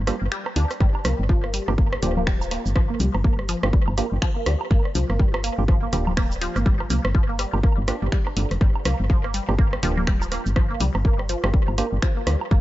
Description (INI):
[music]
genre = minimal techno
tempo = 123 BPM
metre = 4/4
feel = swing 60% on 16ths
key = G minor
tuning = A4 = 440 Hz
[part]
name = woody FM bass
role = bass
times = 0.0-12.6 s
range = D1 to D2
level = -24 LUFS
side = equal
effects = sidechain pumping
[part]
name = resonant blip pluck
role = riff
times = 0.1-12.6 s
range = D3 to D4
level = -29 LUFS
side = equal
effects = phaser, sidechain pumping, tape echo
[part]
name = percussive organ stab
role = stabs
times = 0.1-11.9 s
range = Bb3 to G4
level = -32 LUFS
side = right 4 dB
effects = chorus, analog delay
[part]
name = house drum kit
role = drums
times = 0.1-12.4 s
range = finger snaps, hi-hat, shaker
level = -31 LUFS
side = equal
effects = analog delay
[part]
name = electronic rim click, woodblock and congas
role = percussion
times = 0.1-12.5 s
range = none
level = -30 LUFS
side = right 1 dB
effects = tape echo
[part]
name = electronic kick drum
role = drums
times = 0.8-12.6 s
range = none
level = -20 LUFS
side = equal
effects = none
[sound]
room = little or no reverb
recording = echo-heavy mix, nothing above 7.7 kHz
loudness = -19 LUFS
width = side -16 dB against mid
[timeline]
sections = 0.0-12.6 A section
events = kick drops out 0.3-0.8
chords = 0.0 Gm7